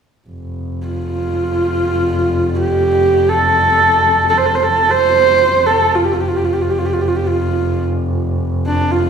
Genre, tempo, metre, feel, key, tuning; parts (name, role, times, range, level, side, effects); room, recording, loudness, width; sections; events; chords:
mongolian traditional, Mongolian folk; free time; F gong mode; A4 = 440 Hz
rich double bass; drone; 0.3-9.1 s; F1; -20 LUFS; equal
warm horsehead fiddle; melody; 0.9-9.1 s; D4 to C5; -13 LUFS; right 2 dB
wet recital hall reverb, RT60 1.4 s; recorded in a church or concert hall, studio ambience; -12 LUFS; side -7 dB against mid
0.3-9.1 A section